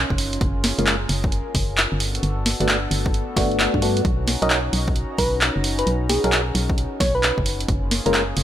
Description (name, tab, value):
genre	UK garage, two-step garage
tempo	132 BPM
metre	4/4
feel	swing 65% on 16ths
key	B lydian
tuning	A4 = 440 Hz
part	warm analog pad	sustained chords	0.0-8.4 s	A#3 to A#5	-30 LUFS	left 1 dB	chorus, sidechain pumping
part	organ-like FM bass	bass	0.0-8.4 s	F#1 to G2	-24 LUFS	equal	none
part	electronic kick drum	drums	0.1-7.8 s	none	-24 LUFS	equal	none
part	punchy analog drum machine	drums	0.2-8.4 s	handclaps, hi-hat, snare drum	-22 LUFS	right 1 dB	none
part	percussive organ stab	stabs	0.8-8.2 s	G#3 to A#4	-26 LUFS	left 1 dB	lush chorus, ping-pong delay
part	soft struck synth lead	melody	4.4-8.2 s	G#4 to D#5	-25 LUFS	equal	chorus, ping-pong delay
room	light reverb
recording	none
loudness	-18 LUFS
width	side -11 dB against mid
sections	0.0-8.4 A section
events	none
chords	0.4 F#maj9; 2.0 Gmaj9; 4.0 Bmaj9; 7.7 F#maj9